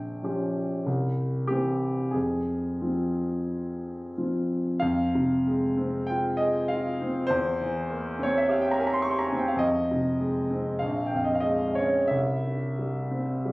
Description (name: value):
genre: classical, romantic nocturne for solo piano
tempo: 43-52 BPM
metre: 4/4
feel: rubato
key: F minor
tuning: A4 = 440 Hz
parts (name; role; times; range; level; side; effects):
- warm grand piano; solo; 0.0-13.5 s; Bb1 to Db6; -24 LUFS; equal; none
room: moderate recital hall reverb, RT60 1.6 s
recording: recorded on a phone in the room, club reverb, compression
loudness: -24 LUFS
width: side -22 dB against mid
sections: 0.0-4.8 A section; 4.8-13.5 A section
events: none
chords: 0.0 Gm7b5/Bb; 0.9 C; 2.1 Fm; 7.3 C7/E; 9.6 Fm; 10.8 Bbm7; 12.1 C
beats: 0.87 2.15 3.48 | 4.83 6.09 7.30 8.48 | 9.63 10.83 12.13 13.48